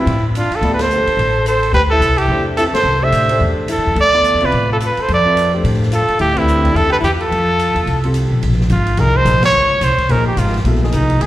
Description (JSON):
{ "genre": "modal jazz", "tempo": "215 BPM", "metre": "4/4", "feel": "swing 60% on 8ths", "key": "D dorian", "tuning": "A4 = 440 Hz", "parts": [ { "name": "warm trumpet", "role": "melody", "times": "0.0-11.3 s", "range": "Eb4 to E5", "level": "-15 LUFS", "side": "right 1 dB", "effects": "slapback echo" }, { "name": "clear alto saxophone", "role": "second line", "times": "0.0-8.1 s", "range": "C4 to C5", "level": "-23 LUFS", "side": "left 2 dB", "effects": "slapback echo" }, { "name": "warm grand piano", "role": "accompaniment", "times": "0.0-11.3 s", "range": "F3 to E5", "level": "-23 LUFS", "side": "left 1 dB", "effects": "slapback echo" }, { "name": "upright bass", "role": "bass", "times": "0.0-11.3 s", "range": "Ab1 to A2", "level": "-16 LUFS", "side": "equal", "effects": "none" }, { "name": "open jazz drum kit", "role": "drums", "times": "0.1-11.3 s", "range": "hi-hat, kick drum, ride cymbal, snare drum", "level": "-27 LUFS", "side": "right 1 dB", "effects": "none" } ], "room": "light reverb, small room reverb", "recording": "live gig heard through the venue's PA, recital hall reverb", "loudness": "-12 LUFS", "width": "side -14 dB against mid", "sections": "0.0-8.4 A section; 8.4-11.3 B section", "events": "band accent 0.8, 2.7, 6.3, 9.4", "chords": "0.0 Dm7; 1.7 Dm9; 6.2 Am7/D; 7.3 F; 8.4 Bb7sus2" }